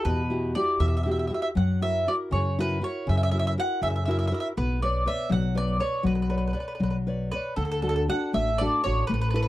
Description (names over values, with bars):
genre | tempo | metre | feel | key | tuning
italian folk, Italian serenade | 79 BPM (dotted quarters) | 6/8 | rubato | B minor | A4 = 440 Hz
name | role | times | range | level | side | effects
mandolin | melody | 0.0-9.5 s | A4 to F#5 | -29 LUFS | right 1 dB | none
nylon-string guitar | accompaniment | 0.0-9.5 s | B2 to D5 | -28 LUFS | left 2 dB | none
upright bass | bass | 0.1-9.5 s | A1 to F#2 | -27 LUFS | equal | none
room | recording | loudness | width
little or no reverb | dry, close 1970s-style studio recording | -23 LUFS | side -15 dB against mid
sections
0.0-7.6 A section; 7.6-9.5 B section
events
none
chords
0.0 Emadd9; 1.6 F#7; 4.6 Bmadd9; 7.6 D